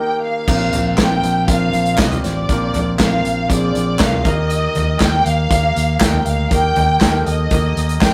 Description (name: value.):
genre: piano-driven pop.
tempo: 119 BPM.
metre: 4/4.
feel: straight.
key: unclear.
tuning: A4 = 439 Hz.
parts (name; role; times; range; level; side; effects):
warm studio violin section; melody; 0.0-8.1 s; D5 to G5; -22 LUFS; equal; none.
clear concert grand piano; accompaniment; 0.0-8.1 s; Eb2 to Bb4; -24 LUFS; equal; none.
vintage muted fingered electric bass; bass; 0.5-8.1 s; A1 to F2; -22 LUFS; equal; none.
modern studio drum kit; drums; 0.5-8.1 s; crash cymbal, handclaps, hi-hat, kick drum, snare drum, toms; -20 LUFS; equal; none.
room: moderate studio reverb, RT60 0.6 s.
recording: rough rehearsal-room recording.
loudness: -16 LUFS.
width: mono.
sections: 0.5-8.1 A section.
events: break 0.0-0.5.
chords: 0.5 Bbadd9; 4.2 Eb.